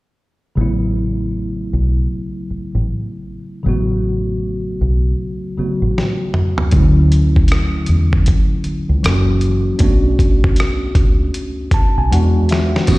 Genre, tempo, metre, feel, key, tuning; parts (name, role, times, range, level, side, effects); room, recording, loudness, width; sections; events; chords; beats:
R&B, neo-soul; 78 BPM; 4/4; swing 62% on 16ths; A major; A4 = 442 Hz
tine electric piano; accompaniment; 0.6-13.0 s; C#3 to A5; -20 LUFS; equal; medium stereo tremolo, slapback echo
deep dub fingered electric bass; bass; 0.6-13.0 s; F#1 to E2; -16 LUFS; equal
dusty soul sampler-style drum kit; drums; 6.0-13.0 s; crash cymbal, hi-hat, kick drum, rim click, snare drum, toms; -15 LUFS; equal
light reverb, digital ambience; live gig heard through the venue's PA, recital hall reverb; -14 LUFS; side -20 dB against mid
0.6-12.9 A section
drum fill 6.0-6.7, 12.1-12.9; tine electric piano fill 11.3-12.9
0.6 A69; 6.7 Dmaj9; 9.0 F#7; 9.8 Bm9; 12.1 E9
| 0.57 1.34 2.11 2.88 | 3.65 4.42 5.18 5.96 | 6.72 7.49 8.26 9.03 | 9.80 10.57 11.34 12.11 | 12.88